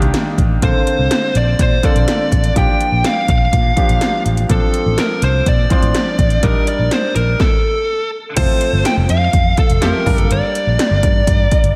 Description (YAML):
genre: 1980s-style pop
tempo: 124 BPM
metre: 4/4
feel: straight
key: unclear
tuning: A4 = 441 Hz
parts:
  - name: clear grand piano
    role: accompaniment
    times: 0.0-11.8 s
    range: D3 to C5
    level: -24 LUFS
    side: equal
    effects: none
  - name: fretless electric bass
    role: bass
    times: 0.0-11.7 s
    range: F1 to Bb2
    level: -19 LUFS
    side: equal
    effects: none
  - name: 80s electronic pad drums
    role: drums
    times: 0.0-11.7 s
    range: crash cymbal, hi-hat, kick drum, snare drum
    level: -19 LUFS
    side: equal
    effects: none
  - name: fuzz lead guitar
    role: melody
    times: 0.6-11.7 s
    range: A4 to G5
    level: -21 LUFS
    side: equal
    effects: distortion, diffuse ambient delay
room: moderate lush hall reverb, RT60 1.8 s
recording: dreamy mix soaked in reverb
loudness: -15 LUFS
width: mono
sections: 0.0-8.4 A section; 8.4-11.8 B section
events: none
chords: 0.0 Ebmaj7; 0.6 Bbmaj9; 2.6 Gm7/Bb; 4.5 Dm7; 6.4 Ebmaj7/Bb; 7.4 N.C.; 8.4 F; 10.1 Gm